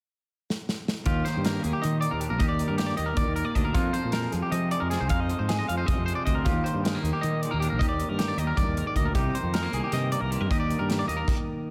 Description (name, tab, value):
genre	math rock and midwest emo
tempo	311 BPM (eighths)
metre	7/8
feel	straight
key	Eb major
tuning	A4 = 440 Hz
part	modern studio drum kit	drums	0.5-11.4 s	crash cymbal, hi-hat, kick drum, snare drum	-32 LUFS	equal	none
part	twangy electric guitar	accompaniment	1.1-11.7 s	Eb2 to G4	-34 LUFS	equal	slapback echo
part	twangy electric guitar	arpeggios	1.1-11.3 s	F4 to F5	-33 LUFS	equal	spring reverb
part	fuzz fingered electric bass	bass	1.1-11.2 s	Bb1 to F3	-31 LUFS	equal	overdrive
room	light reverb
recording	none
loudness	-27 LUFS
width	mono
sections	0.0-1.1 A section; 1.1-11.7 B section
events	drum fill 0.5-1.1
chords	0.0 N.C.; 1.1 Ebmaj7; 3.8 Fm7; 6.5 Ebmaj7; 9.2 Cm7; 10.5 Ebmaj7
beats	0.10 0.29 0.48 0.68 0.87 | 1.06 1.25 1.45 1.64 1.83 2.02 2.21 | 2.41 2.60 2.79 2.98 3.18 3.37 3.56 | 3.75 3.95 4.14 4.33 4.53 4.72 4.91 | 5.10 5.29 5.49 5.68 5.87 6.07 6.26 | 6.45 6.64 6.84 7.03 7.22 7.42 7.61 | 7.80 7.99 8.19 8.38 8.57 8.77 8.96 | 9.15 9.34 9.54 9.73 9.92 10.12 10.31 | 10.50 10.69 10.89 11.08 11.27 11.47 11.66